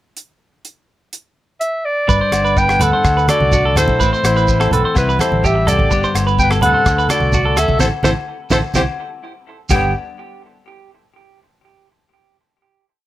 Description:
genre	highlife guitar band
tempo	126 BPM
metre	4/4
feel	straight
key	G major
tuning	A4 = 439 Hz
part	damped 70s drum kit	drums	0.2-9.8 s	crash cymbal, hi-hat, kick drum, rim click, snare drum, toms	-20 LUFS	equal	none
part	clear clarinet	melody	1.6-9.9 s	A4 to G5	-17 LUFS	equal	none
part	clean electric guitar	accompaniment	2.1-9.9 s	G2 to G4	-24 LUFS	left 5 dB	spring reverb
part	semi-hollow electric guitar	arpeggios	2.1-9.9 s	E4 to C5	-21 LUFS	right 4 dB	analog delay
part	fingered electric bass	bass	2.1-9.9 s	G1 to D2	-19 LUFS	equal	none
part	shekere	percussion	2.1-9.9 s	none	-26 LUFS	right 4 dB	none
part	agogo bells	percussion	2.3-9.8 s	none	-27 LUFS	left 6 dB	none
part	breathy trumpet	second line	2.6-9.9 s	B3 to B4	-24 LUFS	left 3 dB	none
part	congas	percussion	2.8-9.9 s	none	-22 LUFS	right 1 dB	none
room	light reverb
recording	none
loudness	-13 LUFS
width	side -14 dB against mid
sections	0.2-2.1 pickup bar; 2.1-9.7 A section; 9.7-11.6 final chord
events	band accent 7.8-9.7; drum fill 9.3-9.7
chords	0.2 N.C.; 2.1 G; 3.0 D; 4.0 Am; 5.0 C; 5.9 G; 6.9 D; 7.8 Am; 8.8 C; 9.7 G5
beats	| 0.17 0.65 1.13 1.61 | 2.09 2.57 3.05 3.52 | 4.00 4.48 4.96 5.43 | 5.91 6.38 6.86 7.33 | 7.80 8.28 8.76 9.23 | 9.71

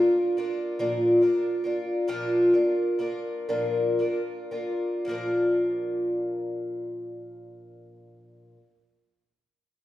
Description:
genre	folk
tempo	35-49 BPM (dotted quarters)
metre	6/8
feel	straight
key	Bb major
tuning	A4 = 441 Hz
part	picked twelve-string acoustic guitar	accompaniment	0.0-8.6 s	Bb2 to Bb4	-24 LUFS	equal	none
room	wet recital hall reverb, RT60 1.4 s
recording	recorded in a church or concert hall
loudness	-24 LUFS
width	side -14 dB against mid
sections	0.0-5.1 A section; 5.1-8.5 B section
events	slowing down 0.0-5.1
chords	0.0 Bb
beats	0.80 | 2.09 3.49 | 5.08 6.78

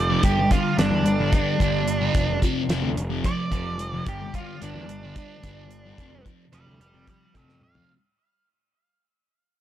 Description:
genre	psychedelic rock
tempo	219 BPM (eighths)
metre	7/8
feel	straight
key	unclear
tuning	A4 = 442 Hz
part	octave-fuzz lead guitar	melody	0.0-7.9 s	D4 to G5	-28 LUFS	right 3 dB	distortion, tape echo
part	fuzz picked electric bass	bass	0.0-7.8 s	F1 to F2	-28 LUFS	equal	overdrive
part	thick fuzz guitar	riff	0.1-7.9 s	F2 to G3	-26 LUFS	left 1 dB	distortion, phaser
part	damped 70s drum kit	drums	0.2-7.9 s	hi-hat, kick drum, snare drum, toms	-24 LUFS	equal	none
room	small room reverb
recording	none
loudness	-20 LUFS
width	side -12 dB against mid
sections	0.0-7.9 A section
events	fade-out 0.0-7.9; lead electric guitar solo 0.0-7.9; drum fill 7.5-7.9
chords	0.2 G5; 2.1 F5; 4.1 G5; 6.0 F5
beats	| 0.24 0.51 0.78 1.06 1.33 1.60 1.88 | 2.15 2.42 2.70 2.97 3.24 3.52 3.79 | 4.07 4.34 4.61 4.89 5.16 5.43 5.71 | 5.98 6.25 6.53 6.80 7.08 7.35 7.62

